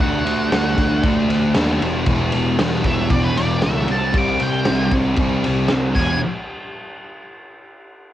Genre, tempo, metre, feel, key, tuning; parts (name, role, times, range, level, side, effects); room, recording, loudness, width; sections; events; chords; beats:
garage rock duo or trio; 116 BPM; 4/4; straight; A4 = 442 Hz
octave-fuzz lead guitar; melody; 0.0-6.2 s; B4 to D6; -24 LUFS; equal; distortion, cassette tape
thick fuzz guitar; riff; 0.0-6.2 s; E2 to D4; -21 LUFS; equal; distortion
fuzz picked electric bass; bass; 0.0-6.2 s; E1 to D#2; -21 LUFS; equal; overdrive
raw garage drum kit; drums; 0.0-6.1 s; crash cymbal, kick drum, ride cymbal, snare drum; -22 LUFS; equal; cassette tape
light reverb; home recording on cassette; -16 LUFS; side -12 dB against mid
0.0-6.2 A section; 6.2-8.1 B section
drum fill 6.0
0.0 D; 1.8 E5; 3.9 C5; 6.0 E; 6.2 N.C.
| 0.01 0.53 1.05 1.56 | 2.08 2.60 3.12 3.63 | 4.15 4.67 5.18 5.70